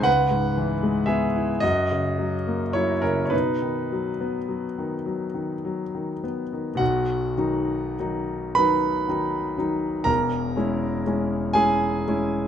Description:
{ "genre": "classical, romantic nocturne for solo piano", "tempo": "32-41 BPM (dotted quarters)", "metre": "6/8", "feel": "rubato", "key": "B major", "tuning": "A4 = 440 Hz", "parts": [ { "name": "clear grand piano", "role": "solo", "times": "0.0-12.5 s", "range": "E1 to B5", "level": "-22 LUFS", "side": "equal", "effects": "none" } ], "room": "light reverb", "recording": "close, detailed microphones", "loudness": "-22 LUFS", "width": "side -9 dB against mid", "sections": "0.0-6.8 A section; 6.8-12.5 B section", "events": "none", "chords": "0.1 C#m7; 1.6 F#; 3.3 B; 10.1 C#m/E" }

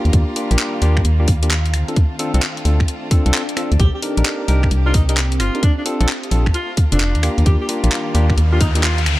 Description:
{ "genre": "UK garage, two-step garage", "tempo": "131 BPM", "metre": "4/4", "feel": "swing 65% on 16ths", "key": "unclear", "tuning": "A4 = 440 Hz", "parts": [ { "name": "rich chamber violin section", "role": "sustained chords", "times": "0.0-9.2 s", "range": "G3 to G4", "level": "-32 LUFS", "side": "right 1 dB", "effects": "sidechain pumping" }, { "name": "barky tine electric piano", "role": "stabs", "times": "0.0-8.8 s", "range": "Bb3 to Bb4", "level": "-24 LUFS", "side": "left 1 dB", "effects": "overdrive, digital delay" }, { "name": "ethereal airy pad", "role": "texture", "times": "0.0-9.2 s", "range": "Eb3 to Eb6", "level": "-30 LUFS", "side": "equal", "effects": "ensemble chorus, built-in reverb, phaser, sidechain pumping" }, { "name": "organ-like FM bass", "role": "bass", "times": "0.1-9.2 s", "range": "F1 to Eb2", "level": "-15 LUFS", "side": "equal", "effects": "none" }, { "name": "electronic kick drum", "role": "drums", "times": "0.1-8.7 s", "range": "none", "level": "-16 LUFS", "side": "equal", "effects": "none" }, { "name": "garage drum kit", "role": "drums", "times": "0.1-9.2 s", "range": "finger snaps, handclaps, hi-hat", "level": "-22 LUFS", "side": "left 1 dB", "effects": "none" }, { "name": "warm alto saxophone", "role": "melody", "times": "3.8-9.0 s", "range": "D4 to G4", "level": "-25 LUFS", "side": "left 1 dB", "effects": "digital delay" }, { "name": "riser", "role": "sound effects", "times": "8.3-9.2 s", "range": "none", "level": "-26 LUFS", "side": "left 4 dB", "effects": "none" } ], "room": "little or no reverb", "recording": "none", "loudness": "-14 LUFS", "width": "side -17 dB against mid", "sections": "0.0-9.2 A section", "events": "riser 8.3-9.2", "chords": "0.0 Ebmaj7; 1.7 Dm7; 3.8 Cm7; 5.6 Bbmaj7; 7.2 Ebmaj7" }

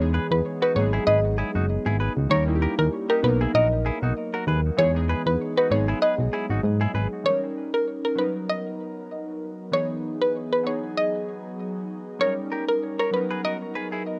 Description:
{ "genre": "afrobeats", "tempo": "97 BPM", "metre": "4/4", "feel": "swing 55% on 16ths", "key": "B major", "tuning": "A4 = 440 Hz", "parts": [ { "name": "glassy digital keys", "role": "accompaniment", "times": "0.0-14.2 s", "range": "E3 to A#4", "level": "-32 LUFS", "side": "equal", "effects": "chorus, cassette tape" }, { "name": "solid FM bass", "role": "bass", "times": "0.0-7.1 s", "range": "F#1 to G#2", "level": "-26 LUFS", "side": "equal", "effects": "none" }, { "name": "direct-recorded clean electric guitar", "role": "riff", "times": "0.1-7.1, 12.2-14.0 s", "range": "D#4 to C#5", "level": "-33 LUFS", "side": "equal", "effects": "vibrato effect, cassette tape, analog delay" }, { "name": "mallet-like synth pluck", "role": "melody", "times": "0.3-13.9 s", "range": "A#4 to D#5", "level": "-26 LUFS", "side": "equal", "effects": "chorus, cassette tape" }, { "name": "airy breathy pad", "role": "sustained chords", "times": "7.8-14.2 s", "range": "E3 to A#4", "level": "-37 LUFS", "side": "equal", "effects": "chorus, cassette tape" } ], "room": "moderate booth ambience, RT60 0.2 s", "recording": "home recording on cassette", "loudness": "-24 LUFS", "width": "mono", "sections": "0.0-7.3 A section; 7.3-14.2 B section", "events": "none", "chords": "0.0 Emaj7; 0.8 G#m7; 2.3 D#7; 3.2 Bmaj7; 4.8 Emaj7; 5.7 G#m7; 7.3 D#7; 8.2 Bmaj7; 9.7 Emaj7; 10.7 G#m7; 12.2 D#7; 13.1 Bmaj7" }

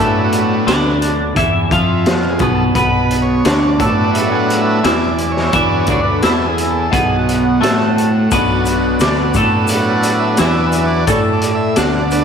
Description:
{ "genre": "psychedelic rock", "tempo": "87 BPM", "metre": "4/4", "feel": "straight", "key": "B minor", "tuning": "A4 = 440 Hz", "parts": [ { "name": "overdriven combo organ", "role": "sustained chords", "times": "0.0-12.2 s", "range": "D3 to G#5", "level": "-19 LUFS", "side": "right 2 dB", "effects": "none" }, { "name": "twelve-string electric guitar", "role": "riff", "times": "0.0-12.2 s", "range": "B2 to A4", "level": "-15 LUFS", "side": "equal", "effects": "phaser, double-tracked left and right" }, { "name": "fuzz fingered electric bass", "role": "bass", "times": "0.0-12.2 s", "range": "B1 to A2", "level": "-20 LUFS", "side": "left 1 dB", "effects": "overdrive" }, { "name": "raw garage drum kit", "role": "drums", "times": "0.3-12.2 s", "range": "hi-hat, kick drum, snare drum", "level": "-19 LUFS", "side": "left 1 dB", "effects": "none" }, { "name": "tube shaker", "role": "percussion", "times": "8.3-12.2 s", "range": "none", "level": "-32 LUFS", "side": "left 8 dB", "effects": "none" } ], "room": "wet lush hall reverb, RT60 2.2 s", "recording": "dreamy mix soaked in reverb", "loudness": "-12 LUFS", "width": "side -7 dB against mid", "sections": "0.0-12.2 A section", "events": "transistor combo organ solo 0.0-12.2", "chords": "0.0 Bm" }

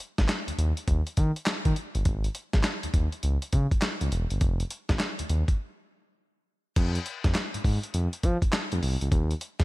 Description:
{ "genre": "R&B, new jack swing", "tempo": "102 BPM", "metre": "4/4", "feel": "swing 64% on 16ths", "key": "unclear", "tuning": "A4 = 440 Hz", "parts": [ { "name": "dusty soul sampler-style drum kit", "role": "drums", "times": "0.0-9.6 s", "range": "crash cymbal, handclaps, hi-hat, kick drum, snare drum", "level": "-27 LUFS", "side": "equal", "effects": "none" }, { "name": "smooth gliding synth bass", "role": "bass", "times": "0.2-9.6 s", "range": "Fb1 to F3", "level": "-26 LUFS", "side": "equal", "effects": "none" } ], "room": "little or no reverb", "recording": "none", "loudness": "-25 LUFS", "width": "side -19 dB against mid", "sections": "0.0-6.8 A section; 6.8-9.6 B section", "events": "break 5.6-6.8", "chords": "none" }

